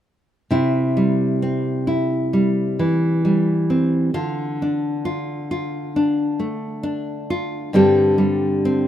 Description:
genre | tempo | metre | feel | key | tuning
folk, solo fingerstyle acoustic guitar | 66 BPM | 4/4 | straight | C major | A4 = 440 Hz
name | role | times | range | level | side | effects
nylon-string guitar | solo | 0.5-8.9 s | G2 to G4 | -18 LUFS | equal | none
room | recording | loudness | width
light reverb, small room ambience | rough home demo mix | -18 LUFS | side -11 dB against mid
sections
0.5-8.9 A section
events
none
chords
0.5 C; 4.1 Dm; 7.7 Gsus4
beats
| 0.51 1.42 2.33 3.24 | 4.14 5.05 5.95 6.85 | 7.74 8.64

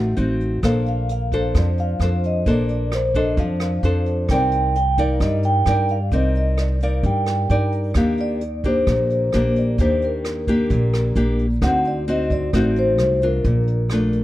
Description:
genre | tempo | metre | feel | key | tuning
bossa nova | 131 BPM | 4/4 | straight | Bb major | A4 = 442 Hz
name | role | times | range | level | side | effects
vibraphone with soft mallets | melody | 0.0-14.2 s | Bb4 to G5 | -23 LUFS | equal | none
nylon-string guitar | accompaniment | 0.0-14.2 s | Bb2 to D5 | -22 LUFS | left 1 dB | none
upright bass | bass | 0.0-14.2 s | A1 to G2 | -21 LUFS | equal | none
jazz brush drum kit | drums | 0.2-14.2 s | hi-hat, kick drum, rim click | -27 LUFS | equal | none
room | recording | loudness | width
little or no reverb | dark, warm production | -17 LUFS | side -15 dB against mid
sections
0.0-14.2 A section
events
none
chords
0.0 D7b9 (rootless); 0.6 Bbmaj9; 4.3 Cm9; 8.0 Ebmaj7; 11.6 D7b9; 13.4 Bbmaj7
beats
0.17 | 0.63 1.09 1.55 2.00 | 2.46 2.92 3.38 3.83 | 4.29 4.75 5.21 5.67 | 6.12 6.58 7.04 7.50 | 7.95 8.41 8.87 9.33 | 9.79 10.24 10.70 11.16 | 11.62 12.07 12.53 12.99 | 13.45 13.90

